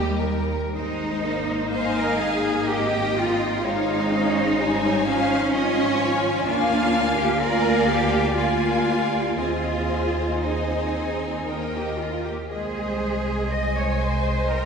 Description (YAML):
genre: classical, slow romantic movement for string orchestra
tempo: 52-65 BPM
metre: 3/4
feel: rubato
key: Ab major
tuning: A4 = 441 Hz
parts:
  - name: rich symphonic violin section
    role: melody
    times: 0.0-14.7 s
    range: C5 to Ab5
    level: -30 LUFS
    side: left 2 dB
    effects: none
  - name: rich studio violin section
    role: second line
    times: 0.0-14.7 s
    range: G4 to Ab5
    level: -28 LUFS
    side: left 2 dB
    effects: none
  - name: rich symphonic viola section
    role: accompaniment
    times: 0.0-14.7 s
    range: F3 to C5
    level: -26 LUFS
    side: equal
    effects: none
  - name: rich studio cello section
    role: bass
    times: 0.0-14.7 s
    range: Eb2 to Eb5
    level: -25 LUFS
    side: right 1 dB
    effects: none
  - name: rich symphonic double bass section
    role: bass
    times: 0.0-14.7 s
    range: Ab1 to Eb2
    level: -29 LUFS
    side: right 2 dB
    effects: none
room: wet church reverb, RT60 3.7 s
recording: recorded in a church or concert hall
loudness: -20 LUFS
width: side -6 dB against mid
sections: 0.8-14.7 A section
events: none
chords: 0.0 Eb; 0.8 Ab; 3.6 Db/Ab; 6.5 Bb7/D; 9.4 Ab/Eb; 11.5 Eb; 12.5 Ab/C